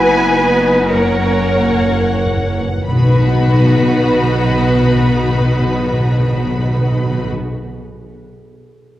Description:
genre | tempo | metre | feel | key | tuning
classical, slow romantic movement for symphony orchestra | 28-37 BPM (dotted quarters) | 6/8 | rubato | B major | A4 = 440 Hz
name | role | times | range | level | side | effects
rich symphonic violin section | melody | 0.0-7.3 s | F#5 to B5 | -23 LUFS | left 2 dB | none
rich symphonic violin section | second line | 0.0-7.3 s | F#4 to C#5 | -19 LUFS | left 1 dB | none
rich chamber viola section | accompaniment | 0.0-7.3 s | A#3 to E4 | -20 LUFS | right 1 dB | none
concert harp | arpeggios | 0.0-7.8 s | F#2 to F#5 | -23 LUFS | left 5 dB | none
rich studio double bass section | bass | 0.0-7.3 s | F#1 to B1 | -21 LUFS | right 2 dB | none
rich symphonic cello section | bass | 0.0-7.3 s | B2 to B4 | -20 LUFS | right 1 dB | none
timpani | percussion | 0.9-7.5 s | F#2 to B2 | -17 LUFS | equal | none
room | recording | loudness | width
moderate concert hall reverb, RT60 2.3 s | worn, warbling old tape, cassette tape, warbly pitch drift | -12 LUFS | side -14 dB against mid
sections
0.0-2.9 A section; 2.9-6.5 B section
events
slowing down 0.0-2.9; timpani fill 0.9-2.9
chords
0.0 F#7sus4; 0.9 F#7; 2.9 B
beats
0.91 | 2.88 4.71

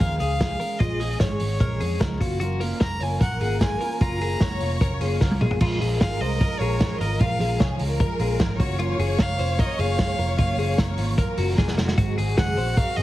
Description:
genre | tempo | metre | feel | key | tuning
jangly indie pop | 150 BPM | 4/4 | straight | Bb minor | A4 = 440 Hz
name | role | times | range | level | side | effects
rich violin | melody | 0.0-13.0 s | Db5 to Bb5 | -30 LUFS | right 1 dB | plate reverb
picked steel-string acoustic guitar | accompaniment | 0.0-13.0 s | Ab2 to Ab4 | -31 LUFS | right 4 dB | none
twelve-string electric guitar | arpeggios | 0.0-13.0 s | F4 to Db5 | -30 LUFS | left 5 dB | tremolo, plate reverb
vintage muted picked electric bass | bass | 0.0-13.0 s | F1 to F2 | -26 LUFS | equal | none
vintage drum kit | drums | 0.0-13.0 s | crash cymbal, hi-hat, kick drum, snare drum, toms | -24 LUFS | equal | none
warm symphonic violin section | second line | 2.4-13.0 s | Gb4 to Db5 | -33 LUFS | equal | plate reverb, ping-pong delay
room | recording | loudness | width
light reverb | heavily compressed radio sound, multiband compression, vinyl crackle | -20 LUFS | side -15 dB against mid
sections
0.0-5.6 A section; 5.6-13.0 B section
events
drum fill 5.2-5.6, 11.6-12.0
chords
0.0 Bbm7; 2.2 Gbmaj7; 5.6 Bbm7; 8.6 Gbmaj7; 12.0 Ab7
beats
0.01 0.41 | 0.81 1.21 1.61 2.01 | 2.41 2.81 3.21 3.61 | 4.01 4.41 4.81 5.21 | 5.61 6.00 6.40 6.80 | 7.20 7.60 8.00 8.40 | 8.79 9.19 9.59 9.99 | 10.39 10.78 11.18 11.58 | 11.98 12.38 12.77

